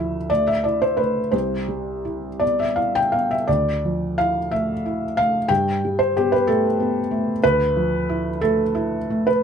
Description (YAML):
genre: neoclassical minimalist piano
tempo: 55-63 BPM (dotted quarters)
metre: 6/8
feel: rubato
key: D dorian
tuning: A4 = 440 Hz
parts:
  - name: felt-muted upright piano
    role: solo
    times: 0.0-9.4 s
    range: C2 to G5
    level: -19 LUFS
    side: equal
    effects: none
room: light reverb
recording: close, detailed microphones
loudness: -19 LUFS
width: side -7 dB against mid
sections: 0.0-9.4 A section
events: none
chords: 0.0 Dmadd9; 1.3 Cmaj7; 3.5 Dmadd9; 5.5 Gadd9; 7.4 Dmadd9